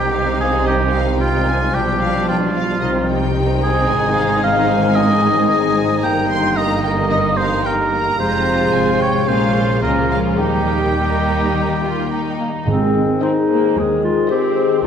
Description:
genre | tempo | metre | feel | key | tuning
classical, dramatic, fast romantic movement for symphony orchestra | 111 BPM | 4/4 | rubato | Ab major from 3.9 s | A4 = 440 Hz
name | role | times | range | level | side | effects
warm symphonic violin section | melody | 0.0-14.7 s | Eb5 to C6 | -27 LUFS | left 3 dB | none
warm oboe | second line | 0.0-12.4 s | F4 to G5 | -19 LUFS | right 1 dB | none
warm symphonic violin section | second line | 0.0-14.7 s | Bb3 to C5 | -24 LUFS | left 1 dB | none
warm symphonic viola section | accompaniment | 0.0-14.9 s | Eb3 to C4 | -22 LUFS | right 2 dB | none
concert harp | arpeggios | 0.0-14.9 s | F2 to D5 | -22 LUFS | left 6 dB | none
dark symphonic cello section | bass | 0.0-14.2 s | Eb2 to Eb3 | -25 LUFS | right 3 dB | none
warm symphonic double bass section | bass | 0.0-14.9 s | F1 to Eb2 | -24 LUFS | right 3 dB | none
mellow clarinet | second line | 12.4-14.9 s | Bb3 to Ab4 | -19 LUFS | equal | none
mellow French horn section | sustained chords | 12.7-14.8 s | Eb3 to Ab4 | -21 LUFS | left 4 dB | none
timpani | percussion | 12.7-13.5 s | Ab2 | -26 LUFS | right 2 dB | none
room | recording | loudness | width
wet scoring stage reverb, RT60 1.7 s | none | -14 LUFS | side -8 dB against mid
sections
0.0-12.7 A section; 12.7-14.9 B section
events
none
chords
0.0 Cm; 1.7 G7/B; 2.8 Cm; 3.9 Ab; 6.0 Eb/G; 8.2 Fm; 9.3 Bbm7; 10.4 Eb; 12.7 Ab

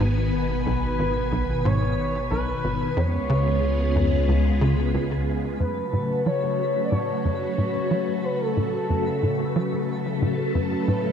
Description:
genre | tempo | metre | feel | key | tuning
ambient, sequencer-driven space music | 91 BPM | 4/4 | straight | F# minor from 5.6 s | A4 = 440 Hz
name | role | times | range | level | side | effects
phased string machine | sustained chords | 0.0-11.1 s | B2 to G#5 | -26 LUFS | left 1 dB | ensemble chorus, phaser
tight sequencer bass | riff | 0.0-11.1 s | G#1 to F#3 | -26 LUFS | equal | ensemble chorus, ping-pong delay
warm sub bass | bass | 0.0-5.6 s | G#1 to C#2 | -27 LUFS | equal | none
twinkling granular texture | texture | 0.0-11.1 s | B4 | -36 LUFS | left 2 dB | built-in reverb
expressive synth lead | melody | 0.3-11.1 s | A4 to D5 | -28 LUFS | left 1 dB | lush chorus, ping-pong delay
room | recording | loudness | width
moderate plate reverb, RT60 3.3 s | dark, warm production | -21 LUFS | side -8 dB against mid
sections
0.0-5.6 A section; 5.6-11.1 B section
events
none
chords
0.0 G#m; 3.0 C#7; 5.6 F#m

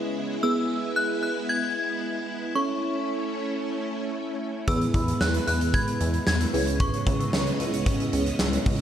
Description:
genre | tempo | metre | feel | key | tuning
synth-pop | 113 BPM | 4/4 | straight | E major | A4 = 440 Hz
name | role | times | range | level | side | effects
muted felt-like synth keys | accompaniment | 0.0-8.6 s | B3 to C#5 | -31 LUFS | right 2 dB | chorus, phaser
string machine, violins | sustained chords | 0.0-8.8 s | C#3 to D#5 | -30 LUFS | equal | ensemble chorus
synth chime | melody | 0.4-8.4 s | C#6 to G#6 | -30 LUFS | left 2 dB | ensemble chorus, tape echo
vibraphone with medium mallets | arpeggios | 4.7-8.8 s | B3 to B5 | -32 LUFS | right 2 dB | tape echo
chorused synth bass | bass | 4.7-8.8 s | C#2 to E2 | -27 LUFS | equal | none
huge arena drum kit | drums | 4.7-8.8 s | hi-hat, kick drum, snare drum | -26 LUFS | equal | none
room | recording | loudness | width
moderate recital hall reverb, RT60 1.4 s, small room ambience | dark, warm production | -23 LUFS | side -10 dB against mid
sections
0.0-8.8 A section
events
none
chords
0.4 E; 2.6 A; 4.7 E; 6.5 C#m7

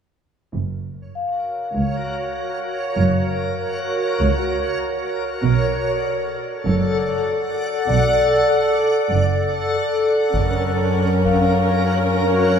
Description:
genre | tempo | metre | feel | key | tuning
cinematic, suspense film score | 98 BPM | 4/4 | straight | unclear | A4 = 440 Hz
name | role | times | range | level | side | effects
backwards swelling texture | sustained chords | 1.5-12.6 s | F#4 to F#5 | -21 LUFS | equal | built-in reverb
dark studio cello section | bass | 0.5-12.6 s | C#2 to B2 | -23 LUFS | right 1 dB | none
warm studio double bass section | bass | 0.5-10.9 s | F#1 to C#2 | -24 LUFS | right 4 dB | none
vibraphone with medium mallets | texture | 1.2-12.6 s | D5 to E#5 | -25 LUFS | left 2 dB | none
dark studio viola section | accompaniment | 10.3-12.6 s | C#4 to A#4 | -20 LUFS | left 1 dB | none
taiko ensemble | drums | 10.3-11.5 s | none | -28 LUFS | left 1 dB | none
room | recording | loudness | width
moderate scoring stage reverb, RT60 2.0 s | minimal, uncompressed stereo recording | -18 LUFS | side -7 dB against mid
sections
0.5-10.3 A section; 10.3-12.6 B section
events
none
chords
0.5 F#; 5.4 Bm7; 10.3 F#

